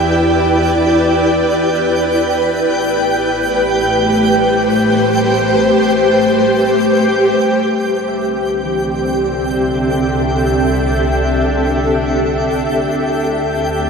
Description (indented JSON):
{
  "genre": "ambient",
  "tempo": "free time",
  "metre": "none",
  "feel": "none",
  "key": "unclear",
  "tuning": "A4 = 439 Hz",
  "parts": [
    { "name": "ethereal airy pad", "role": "sustained chords", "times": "0.0-13.9 s", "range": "A3 to G5", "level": "-14 LUFS", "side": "equal", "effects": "ensemble chorus, built-in reverb, tremolo" },
    { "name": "bright studio double bass section", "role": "bass", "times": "0.0-13.9 s", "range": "A1 to E2", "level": "-24 LUFS", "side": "equal", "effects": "none" },
    { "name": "twinkling granular texture", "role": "texture", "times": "0.0-13.9 s", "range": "G4 to G5", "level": "-19 LUFS", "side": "equal", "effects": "built-in reverb" },
    { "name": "bowed-like drone", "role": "drone", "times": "8.4-13.9 s", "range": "D3 to D4", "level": "-23 LUFS", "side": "left 1 dB", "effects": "built-in reverb" },
    { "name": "concert harp", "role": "arpeggios", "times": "8.1-13.8 s", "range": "E3 to G5", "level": "-34 LUFS", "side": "left 2 dB", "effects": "none" }
  ],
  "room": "wet cathedral reverb, RT60 5.1 s",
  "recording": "in a vast, echoing space, cassette tape",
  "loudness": "-12 LUFS",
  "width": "side -5 dB against mid",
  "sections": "0.0-7.8 A section; 7.8-13.9 B section",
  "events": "fade-out on double bass section 0.0-7.8; filter sweep on ambient pad 7.8-13.9",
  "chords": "0.0 Em7; 2.7 Am9; 7.8 C6; 13.0 D9sus4"
}